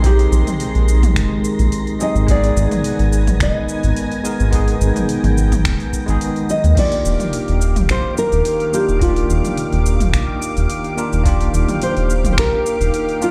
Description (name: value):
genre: sunset chillout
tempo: 107 BPM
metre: 4/4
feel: swing 53% on 16ths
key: Eb major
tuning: A4 = 440 Hz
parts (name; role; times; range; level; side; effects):
- nylon-string guitar; melody; 0.0-13.3 s; F4 to Eb5; -24 LUFS; equal; delay
- bell-like tine electric piano; accompaniment; 0.0-13.3 s; Ab3 to Bb4; -26 LUFS; equal; delay
- lush unison pad; sustained chords; 0.0-13.3 s; Eb3 to D6; -27 LUFS; equal; chorus
- round analog bass; bass; 0.0-12.9 s; Eb1 to Eb2; -18 LUFS; equal; none
- deep house drum kit; drums; 0.0-13.3 s; cabasa, crash cymbal, finger snaps, hi-hat, toms; -28 LUFS; equal; overdrive
- electronic kick drum; drums; 0.0-12.5 s; none; -22 LUFS; equal; overdrive
- wind-like tuned noise texture; texture; 0.0-13.3 s; Bb4 to D6; -38 LUFS; equal; built-in reverb
room: light reverb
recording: played on a big sound system in a bare room, large studio reverb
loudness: -17 LUFS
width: mono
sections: 0.0-13.3 A section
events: none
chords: 0.0 Bb13sus4; 2.3 Abm; 6.8 Ebmaj9